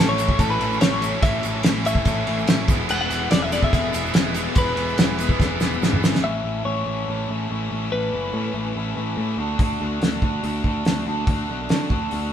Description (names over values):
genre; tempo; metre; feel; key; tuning
indie rock; 143 BPM; 4/4; straight; A major; A4 = 442 Hz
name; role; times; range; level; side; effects
twelve-string electric guitar; melody; 0.0-9.4 s; A4 to F#5; -26 LUFS; left 2 dB; none
overdriven combo organ; sustained chords; 0.0-6.2 s; G#4 to B5; -36 LUFS; right 1 dB; none
overdriven electric guitar; riff; 0.0-12.3 s; A2 to A4; -27 LUFS; left 2 dB; none
scooped high-gain guitar; riff; 0.0-6.2 s; A2 to E4; -29 LUFS; right 5 dB; distortion
picked electric bass; bass; 0.0-12.3 s; E1 to D3; -27 LUFS; equal; none
cloth-damped thuddy drum kit; drums; 0.2-6.2, 9.6-12.2 s; crash cymbal, hi-hat, kick drum, ride cymbal, snare drum, toms; -20 LUFS; equal; none
tube shaker; percussion; 0.2-6.2 s; none; -40 LUFS; right 4 dB; none
room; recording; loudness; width
moderate stone room reverb, RT60 1.2 s; band playing live in one room; -19 LUFS; side -9 dB against mid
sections
0.0-6.2 A section; 6.2-12.3 B section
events
drum fill 5.4-6.2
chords
0.0 Aadd9; 2.7 E; 6.2 Aadd9; 9.4 D